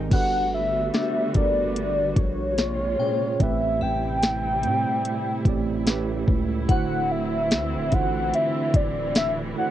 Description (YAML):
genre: contemporary R&B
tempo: 73 BPM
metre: 4/4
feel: swing 58% on 16ths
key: unclear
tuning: A4 = 440 Hz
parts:
  - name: tine electric piano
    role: accompaniment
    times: 0.0-9.7 s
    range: G#2 to G5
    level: -29 LUFS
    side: right 7 dB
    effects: cassette tape
  - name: warm studio string section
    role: sustained chords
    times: 0.0-9.7 s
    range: C3 to F#4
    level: -31 LUFS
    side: equal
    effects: sidechain pumping, cassette tape
  - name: long sustained 808-style bass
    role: bass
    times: 0.0-9.5 s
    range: D1 to A2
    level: -31 LUFS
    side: left 1 dB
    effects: none
  - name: warm velvety synth lead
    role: melody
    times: 0.1-9.7 s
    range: C#5 to G5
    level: -25 LUFS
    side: left 1 dB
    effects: chorus, cassette tape
  - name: smooth R&B drum kit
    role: drums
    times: 0.1-9.4 s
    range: crash cymbal, hi-hat, kick drum, snare drum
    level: -22 LUFS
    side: left 1 dB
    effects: cassette tape
  - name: glassy synth bell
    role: texture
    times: 0.9-9.0 s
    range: D4 to G5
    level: -38 LUFS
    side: left 10 dB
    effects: chorus, cassette tape, analog delay
room: little or no reverb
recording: home recording on cassette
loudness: -21 LUFS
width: side -12 dB against mid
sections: 0.1-9.7 A section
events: none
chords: 0.1 Gmaj9; 2.6 Bbm9; 3.4 Am9; 5.9 A9; 6.7 D9